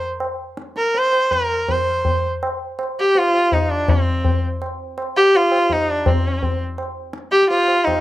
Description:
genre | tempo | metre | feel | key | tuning
indian classical, Hindustani | 164 BPM | 3/4 | straight | C raga bhimpalasi | A4 = 440 Hz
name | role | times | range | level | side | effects
clear sarangi | melody | 0.0-8.0 s | C4 to C5 | -17 LUFS | equal | none
tabla | percussion | 0.2-8.0 s | none | -22 LUFS | left 1 dB | none
room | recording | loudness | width
light reverb | close, detailed microphones | -16 LUFS | side -15 dB against mid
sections
0.0-3.9 A section; 3.9-8.0 B section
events
speeding up 0.0-8.0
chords
none

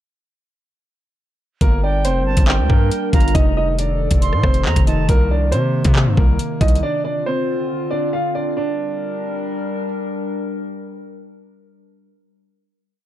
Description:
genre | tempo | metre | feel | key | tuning
hip hop, drill | 138 BPM | 4/4 | half-time | G minor | A4 = 441 Hz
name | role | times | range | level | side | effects
warm upright piano | melody | 1.6-9.8 s | Bb3 to F5 | -22 LUFS | right 1 dB | low-pass filter
warbly tape-like pad | sustained chords | 2.0-11.7 s | C3 to Bb4 | -25 LUFS | left 1 dB | chorus, built-in reverb
distorted 808-style bass | bass | 1.6-6.8 s | F1 to C3 | -18 LUFS | equal | distortion
drill drum kit | drums | 1.6-6.8 s | handclaps, hi-hat, kick drum, rim click | -16 LUFS | equal | none
reedy silver concert flute | second line | 1.8-5.1 s | G5 to C6 | -27 LUFS | right 7 dB | ping-pong delay
room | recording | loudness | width
little or no reverb | dark, warm production | -16 LUFS | side -12 dB against mid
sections
1.6-8.6 hook; 8.6-12.0 final chord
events
none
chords
1.6 Gm; 3.3 F7; 5.1 Cm7; 6.8 Dm7; 8.6 Gm

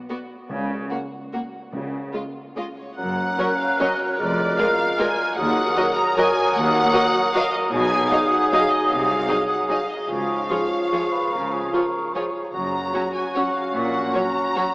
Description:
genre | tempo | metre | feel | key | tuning
classical, orchestral ballroom waltz | 149 BPM | 3/4 | uneven beats, rubato | F# major | A4 = 440 Hz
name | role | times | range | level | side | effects
warm studio violin section | melody | 0.1-14.7 s | C#5 to A#5 | -27 LUFS | equal | none
rich studio violin section | second line | 0.1-14.6 s | E#4 to D#5 | -32 LUFS | equal | none
warm studio viola section | accompaniment | 0.1-14.6 s | E#3 to F#4 | -29 LUFS | equal | none
rich chamber cello section | bass | 0.5-14.1 s | D#2 to C#3 | -29 LUFS | equal | none
rich studio double bass section | bass | 0.5-14.1 s | E#1 to D#2 | -35 LUFS | equal | none
timpani | percussion | 0.5-2.3 s | C#3 | -35 LUFS | equal | none
dark cor anglais | second line | 3.0-14.7 s | F#4 to C#5 | -27 LUFS | equal | none
mellow hollow silver concert flute | second line | 3.0-14.7 s | C#6 to F#6 | -24 LUFS | equal | none
warm clarinet | second line | 3.0-14.7 s | C#4 to F#4 | -30 LUFS | equal | none
dark bassoon | accompaniment | 3.0-14.7 s | E#3 to G#3 | -28 LUFS | equal | none
dark French horn section | sustained chords | 3.4-14.7 s | E#3 to A#4 | -30 LUFS | equal | none
room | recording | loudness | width
wet cathedral reverb, RT60 6.2 s | in a vast, echoing space, small speaker sound | -19 LUFS | side -26 dB against mid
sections
0.0-3.0 A section; 3.0-14.7 B section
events
none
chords
0.5 F#/C# (rootless); 1.7 C#5; 3.0 F#; 4.2 A#7/E#; 5.4 D#m; 7.7 G#m7/B; 8.9 G#7/B#; 10.1 C#; 12.5 F#; 13.7 F#/A#

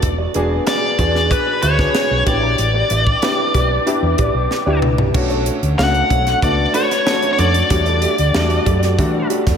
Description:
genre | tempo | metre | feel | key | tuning
polished 1980s jazz-funk pop | 94 BPM | 4/4 | straight | unclear | A4 = 439 Hz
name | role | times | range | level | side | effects
clear concert grand piano | accompaniment | 0.0-9.6 s | G3 to G#4 | -20 LUFS | equal | analog chorus
mellow electric guitar | riff | 0.0-9.6 s | D4 to E5 | -26 LUFS | right 2 dB | lush chorus
hollow-body short-scale fingered electric bass | bass | 0.0-9.6 s | E1 to E3 | -19 LUFS | equal | none
crisp fusion drum kit | drums | 0.0-9.6 s | crash cymbal, hi-hat, kick drum, snare drum, toms | -21 LUFS | equal | none
nasal lead guitar with a parked wah | melody | 0.7-9.3 s | B4 to F#5 | -19 LUFS | left 2 dB | overdrive, ping-pong delay
room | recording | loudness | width
wet plate reverb, RT60 2.6 s | dreamy mix soaked in reverb | -14 LUFS | side -7 dB against mid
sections
0.0-5.1 A section; 5.1-9.6 B section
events
drum fill 4.5-5.1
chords
0.0 E9; 2.3 A9sus4; 5.1 Bm9; 7.7 Em11

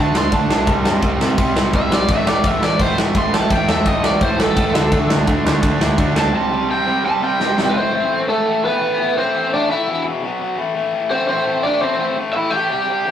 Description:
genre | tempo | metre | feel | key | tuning
punk rock | 170 BPM | 4/4 | straight | A minor | A4 = 440 Hz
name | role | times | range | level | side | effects
overdriven electric guitar | melody | 0.0-13.1 s | A3 to C6 | -19 LUFS | right 1 dB | none
overdriven electric guitar | riff | 0.0-13.1 s | E2 to D4 | -22 LUFS | left 4 dB | none
overdriven electric guitar | riff | 0.0-7.7 s | A2 to D4 | -21 LUFS | right 4 dB | none
growling picked electric bass | bass | 0.0-6.3 s | A1 to C3 | -23 LUFS | equal | overdrive
big rock drum kit | drums | 0.1-7.7 s | crash cymbal, kick drum, snare drum | -18 LUFS | equal | none
room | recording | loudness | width
moderate studio reverb, RT60 0.6 s | rough rehearsal-room recording | -15 LUFS | side -10 dB against mid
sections
0.0-7.7 A section; 7.7-13.1 B section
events
overdriven electric guitar solo 0.0-7.7; drum fill 7.4-7.7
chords
0.0 D5; 0.7 C5; 2.1 A5; 4.7 D5; 6.3 C5; 7.7 Am; 9.9 E5; 10.2 B5; 10.6 Am; 12.7 C5

